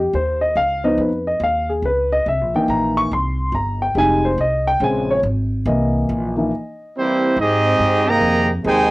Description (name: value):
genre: jazz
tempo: 141 BPM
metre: 4/4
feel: swing 66% on 8ths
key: F minor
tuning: A4 = 439 Hz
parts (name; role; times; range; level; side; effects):
- warm baby grand piano; accompaniment; 0.0-7.3 s; Db3 to Db6; -18 LUFS; left 1 dB; cassette tape
- upright bass; bass; 0.0-8.9 s; F1 to Ab2; -23 LUFS; equal; none
- warm trumpet section; melody; 7.0-8.9 s; Bb3 to Bb5; -16 LUFS; right 1 dB; none
- warm trombone section; second line; 7.0-8.9 s; C3 to Eb4; -19 LUFS; right 2 dB; cassette tape
room: moderate studio reverb, RT60 0.5 s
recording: home recording on cassette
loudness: -16 LUFS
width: side -20 dB against mid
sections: 0.0-7.4 A section; 7.4-8.9 B section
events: grand piano solo 0.0-7.4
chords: 0.0 F7sus2; 0.6 Db7; 2.3 C7#9; 4.0 Fm9; 4.8 Bbm9; 5.7 C7#9; 7.4 Fm9